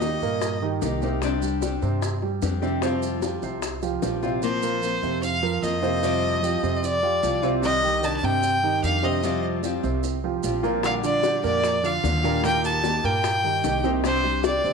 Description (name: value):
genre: latin, Cuban son and guajira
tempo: 150 BPM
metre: 4/4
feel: straight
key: Bb major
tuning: A4 = 439 Hz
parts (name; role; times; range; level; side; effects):
- clear fiddle; melody; 0.0-0.6, 4.4-14.7 s; C5 to A5; -24 LUFS; left 1 dB; none
- fingerpicked steel-string acoustic guitar; accompaniment; 0.0-14.7 s; C3 to G4; -29 LUFS; left 12 dB; none
- warm concert grand piano; arpeggios; 0.0-14.7 s; Bb2 to C5; -27 LUFS; right 10 dB; none
- upright bass; bass; 0.0-14.7 s; Bb1 to G2; -29 LUFS; equal; none
- bongos; percussion; 0.0-4.4, 10.8-14.6 s; none; -31 LUFS; left 13 dB; none
- maracas; percussion; 0.0-14.7 s; none; -40 LUFS; right 14 dB; none
room: moderate echo chamber reverb, RT60 1.4 s, studio reverb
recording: 1960s-style stereo with parts hard left and right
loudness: -21 LUFS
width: side -5 dB against mid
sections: 0.0-4.4 A section; 4.4-14.7 A section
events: none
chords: 0.0 Eb; 1.2 Csus2; 2.8 Fsus2; 4.4 Bbsus2; 6.0 Fsus2; 7.6 Cmadd9; 9.2 Fsus2; 10.8 Bb6; 12.4 Eb; 14.0 Csus2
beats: 0.02 0.42 0.82 | 1.22 1.62 2.02 2.42 | 2.82 3.22 3.62 4.03 | 4.42 4.83 5.23 5.63 | 6.03 6.43 6.83 7.23 | 7.63 8.03 8.43 8.83 | 9.23 9.63 10.03 10.44 | 10.84 11.24 11.64 12.04 | 12.44 12.84 13.24 13.64 | 14.04 14.44